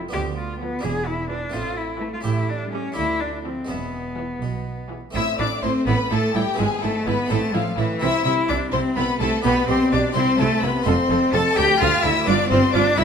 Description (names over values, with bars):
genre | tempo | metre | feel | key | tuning
classical, baroque-style concerto movement with solo episodes | 84 BPM (dotted quarters) | 6/8 | straight | A minor | A4 = 440 Hz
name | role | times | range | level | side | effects
rich chamber violin section | melody | 0.0-13.0 s | C5 to A6 | -27 LUFS | left 5 dB | none
rich chamber violin section | second line | 0.0-13.0 s | E4 to A5 | -26 LUFS | left 3 dB | none
bright studio viola section | accompaniment | 0.0-13.0 s | E3 to A4 | -29 LUFS | right 1 dB | none
harpsichord | accompaniment | 0.0-13.0 s | C2 to G4 | -31 LUFS | right 1 dB | none
rich cello | melody | 0.1-13.0 s | E3 to A4 | -22 LUFS | left 2 dB | none
rich chamber double bass section | bass | 0.1-13.0 s | E1 to D2 | -28 LUFS | right 5 dB | none
rich studio cello section | bass | 0.1-13.0 s | C2 to C3 | -27 LUFS | right 5 dB | none
room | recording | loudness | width
wet recital hall reverb, RT60 1.4 s | none | -19 LUFS | side -7 dB against mid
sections
0.0-5.2 A section; 5.2-13.0 B section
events
none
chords
0.1 Bdim/D; 0.8 E5; 1.5 Am; 2.3 A7; 3.0 Dm; 3.7 E; 5.2 Am; 6.6 E/G#; 7.3 Am; 8.0 C; 9.4 G/B; 10.2 C; 10.9 F; 11.6 Dm; 12.3 G7